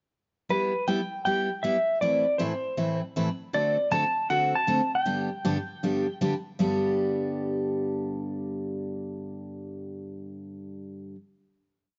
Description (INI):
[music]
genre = country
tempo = 157 BPM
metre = 4/4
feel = swing 66% on 8ths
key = G major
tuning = A4 = 440 Hz
[part]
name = clean lap steel guitar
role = melody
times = 0.5-6.2 s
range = B4 to A5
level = -28 LUFS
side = equal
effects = none
[part]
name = picked steel-string acoustic guitar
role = accompaniment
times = 0.5-11.2 s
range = G2 to B4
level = -31 LUFS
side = equal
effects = none
[sound]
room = light reverb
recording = nothing above 7.6 kHz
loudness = -27 LUFS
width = mono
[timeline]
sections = 0.5-6.6 A section; 6.6-9.6 final chord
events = none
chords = 0.5 G6; 2.0 Amadd9; 3.5 D7; 5.1 G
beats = | 0.50 0.88 1.26 1.64 | 2.02 2.40 2.78 3.16 | 3.54 3.92 4.30 4.69 | 5.07 5.45 5.83 6.21 | 6.59 6.98 7.36 7.74 | 8.12 8.50 8.89 9.27